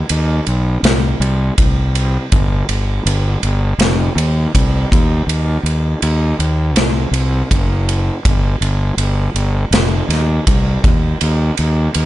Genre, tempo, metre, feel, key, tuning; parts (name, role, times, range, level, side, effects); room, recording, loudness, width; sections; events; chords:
quiet-loud alternative rock; 81 BPM; 4/4; straight; A4 = 440 Hz
fuzz fingered electric bass; bass; 0.1-12.1 s; F1 to D#2; -15 LUFS; equal; overdrive
big rock drum kit; drums; 0.1-12.1 s; kick drum, ride cymbal, snare drum; -17 LUFS; equal
little or no reverb; nothing above 10.8 kHz; -13 LUFS; side -15 dB against mid
0.0-12.1 A section